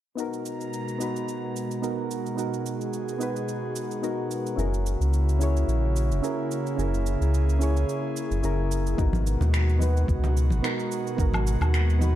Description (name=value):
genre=sunset chillout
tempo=109 BPM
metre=4/4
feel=swing 55% on 16ths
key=G# minor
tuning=A4 = 440 Hz
part: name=soft electric-piano-like synth keys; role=accompaniment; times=0.2-12.2 s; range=B3 to C#5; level=-30 LUFS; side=moving between left 6 dB and right 7 dB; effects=chorus, auto-pan, low-pass filter, ping-pong delay
part: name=airy breathy pad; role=sustained chords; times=0.2-12.2 s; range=B2 to A#5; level=-31 LUFS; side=equal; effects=chorus
part: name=electronic shaker, finger snaps and woodblock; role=drums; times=0.2-12.1 s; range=none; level=-36 LUFS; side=right 2 dB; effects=none
part: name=round analog bass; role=bass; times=4.6-12.2 s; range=F#1 to D#2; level=-23 LUFS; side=equal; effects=none
part: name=electronic kick drum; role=drums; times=9.0-11.3 s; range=none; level=-26 LUFS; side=equal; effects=none
part: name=congas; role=percussion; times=9.1-12.1 s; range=none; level=-34 LUFS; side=right 1 dB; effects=none
room=light reverb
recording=dark, warm production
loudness=-24 LUFS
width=side -12 dB against mid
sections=0.2-9.0 A section; 9.0-12.2 B section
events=filter sweep on synth keys 9.0-12.2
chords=0.2 G#m9; 4.6 F#7; 9.0 G#m9